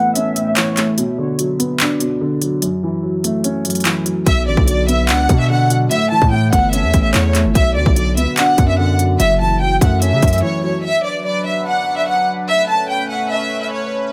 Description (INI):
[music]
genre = hip hop, drill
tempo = 146 BPM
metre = 4/4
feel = half-time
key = B minor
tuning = A4 = 440 Hz
[part]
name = warm studio violin section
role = melody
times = 0.0-0.8, 4.3-13.9 s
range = C#5 to A5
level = -20 LUFS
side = equal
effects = low-pass filter, delay
[part]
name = dark concert grand piano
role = accompaniment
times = 0.0-10.9 s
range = F#2 to D4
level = -21 LUFS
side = equal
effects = low-pass filter
[part]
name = drill drum kit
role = drums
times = 0.2-10.4 s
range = handclaps, hi-hat, kick drum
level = -19 LUFS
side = equal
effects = none
[part]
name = distorted 808-style bass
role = bass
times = 4.3-10.4 s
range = F#1 to C#3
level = -19 LUFS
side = equal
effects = distortion
[part]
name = sweeping resonant pad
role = sustained chords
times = 10.8-14.1 s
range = F#3 to B4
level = -27 LUFS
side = equal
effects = chorus
[sound]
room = little or no reverb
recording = none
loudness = -16 LUFS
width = mono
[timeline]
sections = 0.0-10.8 A section; 10.8-14.1 B section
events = break 0.0-4.3, 10.4-10.8; filter sweep 0.0-4.3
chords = 0.0 Aadd9; 1.0 Bm; 2.6 F#m7; 4.3 Bm; 5.9 Aadd9; 7.6 Bm; 9.2 F#m7; 10.8 Bm; 12.5 Aadd9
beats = 0.16 0.57 | 0.98 1.39 1.80 2.21 | 2.62 3.03 3.44 3.85 | 4.26 4.68 5.09 5.50 | 5.91 6.32 6.73 7.14 | 7.55 7.96 8.38 8.79 | 9.20 9.61 10.02 10.43 | 10.84 11.25 11.66 12.07 | 12.48 12.90 13.31 13.72